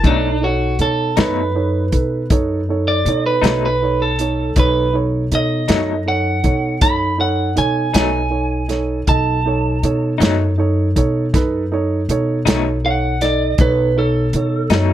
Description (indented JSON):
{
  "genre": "slow blues",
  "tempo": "53 BPM (dotted quarters)",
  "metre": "12/8",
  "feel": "straight",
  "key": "B mixolydian",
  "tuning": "A4 = 442 Hz",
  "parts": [
    { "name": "electric guitar through a small old amp", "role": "accompaniment", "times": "0.0-14.9 s", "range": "B2 to D#4", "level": "-21 LUFS", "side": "left 9 dB", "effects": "tremolo" },
    { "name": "warm upright piano", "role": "accompaniment", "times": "0.0-14.9 s", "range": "D#4 to D#5", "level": "-20 LUFS", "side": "right 4 dB", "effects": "none" },
    { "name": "upright bass", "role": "bass", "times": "0.0-14.9 s", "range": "B1 to B2", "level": "-20 LUFS", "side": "left 1 dB", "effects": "none" },
    { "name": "warm soul drum kit", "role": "drums", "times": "0.0-14.9 s", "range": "hi-hat, kick drum, snare drum", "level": "-18 LUFS", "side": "left 1 dB", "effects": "none" },
    { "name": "electric guitar at the edge of break-up", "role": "second line", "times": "0.1-14.9 s", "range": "D4 to B5", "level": "-20 LUFS", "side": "right 2 dB", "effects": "none" }
  ],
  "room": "moderate club reverb, RT60 0.8 s",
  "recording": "none",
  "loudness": "-15 LUFS",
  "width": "side -12 dB against mid",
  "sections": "0.1-14.9 A section",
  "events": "clean electric guitar solo 0.1-14.9",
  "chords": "0.1 B7"
}